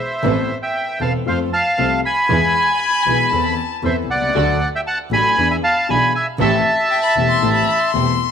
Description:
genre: tango.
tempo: 117 BPM.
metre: 4/4.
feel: rubato.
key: A minor.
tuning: A4 = 440 Hz.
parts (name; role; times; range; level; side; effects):
bandoneon; melody; 0.0-7.9 s; C5 to B5; -17 LUFS; right 1 dB; none.
warm concert grand piano; accompaniment; 0.2-8.2 s; E1 to A4; -23 LUFS; left 11 dB; none.
dark studio string section; stabs; 0.2-8.2 s; C4 to C5; -28 LUFS; right 13 dB; none.
rich double bass; bass; 0.2-8.2 s; E1 to F2; -23 LUFS; right 4 dB; none.
warm violin; second line; 2.5-3.7, 6.9-8.3 s; G5 to C6; -23 LUFS; left 12 dB; none.
room: moderate plate reverb, RT60 3.4 s.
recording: 1960s-style stereo with parts hard left and right.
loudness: -15 LUFS.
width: side -7 dB against mid.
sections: 0.0-8.3 A section.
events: none.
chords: 0.2 Amadd9; 1.3 F; 2.3 E; 3.3 Amadd9/E; 4.3 D; 5.4 E7; 6.4 Am7.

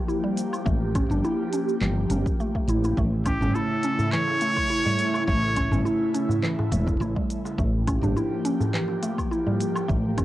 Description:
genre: organic downtempo.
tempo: 104 BPM.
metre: 4/4.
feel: swing 53% on 16ths.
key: unclear.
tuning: A4 = 440 Hz.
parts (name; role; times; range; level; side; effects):
airy breathy pad; sustained chords; 0.0-10.2 s; C#3 to G4; -28 LUFS; equal; chorus, phaser, sidechain pumping, cassette tape, plate reverb.
mallet-like synth pluck; arpeggios; 0.1-10.2 s; E3 to E4; -28 LUFS; equal; chorus, cassette tape, analog delay.
organic electronic drum kit; drums; 0.1-10.2 s; cabasa, handclaps, hi-hat, woodblock; -35 LUFS; equal; cassette tape.
woody fretless electric bass; bass; 0.7-10.2 s; E1 to A1; -25 LUFS; equal; sidechain pumping.
electronic kick drum; drums; 0.7-10.2 s; none; -28 LUFS; equal; overdrive, cassette tape.
trumpet with straight mute; melody; 3.3-5.8 s; G4 to C#5; -26 LUFS; equal; cassette tape, analog delay.
darbuka; percussion; 3.4-9.9 s; none; -29 LUFS; equal; none.
room: moderate studio reverb, RT60 0.6 s.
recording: home recording on cassette.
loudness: -22 LUFS.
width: side -15 dB against mid.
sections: 0.0-10.2 A section.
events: none.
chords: 0.0 Gm7; 3.0 A; 7.6 Gm7.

